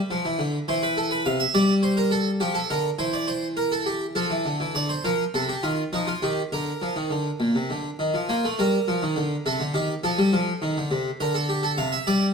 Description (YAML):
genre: classical, baroque-style two-part invention for harpsichord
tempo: 103 BPM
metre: 3/4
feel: straight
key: F major, Bb major from 4.7 s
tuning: A4 = 440 Hz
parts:
  - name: harpsichord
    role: solo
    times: 0.0-12.3 s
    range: Bb2 to F5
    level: -22 LUFS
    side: equal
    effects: none
room: wet stone room reverb, RT60 0.9 s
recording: none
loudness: -22 LUFS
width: side -5 dB against mid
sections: 0.0-4.7 A section; 4.7-8.3 B section; 8.3-12.3 C section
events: none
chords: 0.0 G (rootless); 0.7 C/E; 1.3 F/C; 2.4 Gm7/F; 3.0 C/E; 4.2 F; 4.7 Bb/D; 5.3 Cm; 5.9 Ebadd9; 6.5 Bb/D; 8.3 Bb; 9.5 Cm; 10.0 F; 11.2 Bb/D; 11.8 F5/C